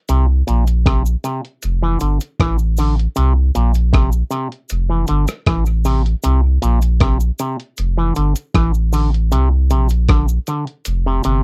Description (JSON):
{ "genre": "roots reggae", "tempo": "78 BPM", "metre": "4/4", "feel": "straight", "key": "unclear", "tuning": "A4 = 442 Hz", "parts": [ { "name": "auto-wah clav", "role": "arpeggios", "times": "0.1-11.4 s", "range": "Bb2 to E3", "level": "-23 LUFS", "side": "equal", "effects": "overdrive" }, { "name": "soft dub sub bass", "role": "bass", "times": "0.1-11.4 s", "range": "F1 to C2", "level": "-17 LUFS", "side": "equal", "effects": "none" }, { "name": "lo-fi sampler-style drum kit", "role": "drums", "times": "0.1-11.4 s", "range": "hi-hat, kick drum, rim click", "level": "-21 LUFS", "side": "equal", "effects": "none" }, { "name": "cabasa", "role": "percussion", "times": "0.1-11.4 s", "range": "none", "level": "-36 LUFS", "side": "equal", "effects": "none" } ], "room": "little or no reverb", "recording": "dry, close 1970s-style studio recording", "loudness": "-17 LUFS", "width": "mono", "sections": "0.1-11.4 A section", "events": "none", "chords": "0.1 Bbsus2; 1.6 Fmaj7; 3.2 Bbsus2; 4.7 Fmaj7; 6.2 Bbsus2; 7.8 Fmaj7; 9.3 Bbadd9; 10.9 F5" }